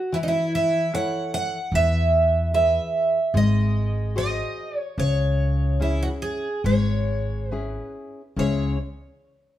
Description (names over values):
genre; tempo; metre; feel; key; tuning
fado-style ballad; 73 BPM; 4/4; rubato; C# minor; A4 = 440 Hz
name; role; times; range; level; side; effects
picked twelve-string acoustic guitar; melody; 0.0-8.8 s; D#4 to F#5; -24 LUFS; right 2 dB; none
nylon-string guitar; accompaniment; 0.1-8.8 s; C#3 to C#5; -27 LUFS; left 4 dB; none
upright bass; bass; 1.7-8.8 s; G#1 to E2; -23 LUFS; equal; none
room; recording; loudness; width
wet stone room reverb, RT60 1.0 s; band playing live in one room; -20 LUFS; side -12 dB against mid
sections
0.0-8.4 A section; 8.4-9.6 B section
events
none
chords
0.0 A; 1.7 E; 3.3 G#7; 5.0 C#m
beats
0.12 0.92 | 1.73 2.53 3.34 4.16 | 4.97 5.80 6.64 7.51 | 8.37